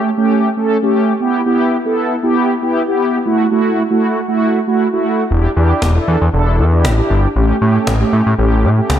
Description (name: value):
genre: dance-pop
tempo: 117 BPM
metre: 4/4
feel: straight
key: unclear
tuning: A4 = 440 Hz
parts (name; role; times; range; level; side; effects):
- mellow synth brass; accompaniment; 0.0-9.0 s; A3 to A4; -14 LUFS; right 1 dB; chorus
- fat analog bass; bass; 5.3-9.0 s; E1 to A2; -13 LUFS; equal; none
- cajon; drums; 5.8-9.0 s; none; -22 LUFS; left 1 dB; none
room: light reverb, small room ambience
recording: dark, warm production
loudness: -12 LUFS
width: side -10 dB against mid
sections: 0.0-9.0 A section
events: none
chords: 0.0 A7; 1.2 G6; 3.3 F#m7; 5.3 Em7; 7.4 A7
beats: 0.18 0.69 | 1.21 1.72 2.23 2.75 | 3.26 3.77 4.28 4.80 | 5.31 5.82 6.33 6.85 | 7.36 7.87 8.39 8.90